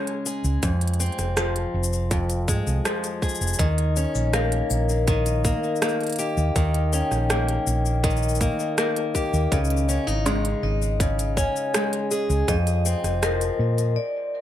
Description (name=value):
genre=folktronica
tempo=81 BPM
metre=4/4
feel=straight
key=Eb mixolydian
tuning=A4 = 438 Hz
part: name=picked old ladder-braced acoustic guitar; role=arpeggios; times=0.0-14.0 s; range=F2 to Ab4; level=-27 LUFS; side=left 1 dB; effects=vintage 12-bit sampler grit, low-pass filter, ping-pong delay
part: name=organic electronic drum kit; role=drums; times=0.1-13.9 s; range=hi-hat, rim click, shaker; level=-28 LUFS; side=equal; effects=overdrive
part: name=hollow-body short-scale fingered electric bass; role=bass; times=0.4-14.0 s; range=F1 to Bb2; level=-23 LUFS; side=right 1 dB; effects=tube saturation
part: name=electronic kick drum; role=drums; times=0.6-12.6 s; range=none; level=-26 LUFS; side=equal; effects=overdrive
part: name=vibraphone with medium hard mallets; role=second line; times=3.6-14.4 s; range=Bb4 to Ab5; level=-28 LUFS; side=left 4 dB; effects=ping-pong delay
room=light reverb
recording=none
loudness=-21 LUFS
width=side -11 dB against mid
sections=0.0-14.4 A section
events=break 14.0-14.4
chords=0.0 Dbsus2; 0.6 Fm; 3.6 Eb7; 9.5 Dbsus2; 12.5 F5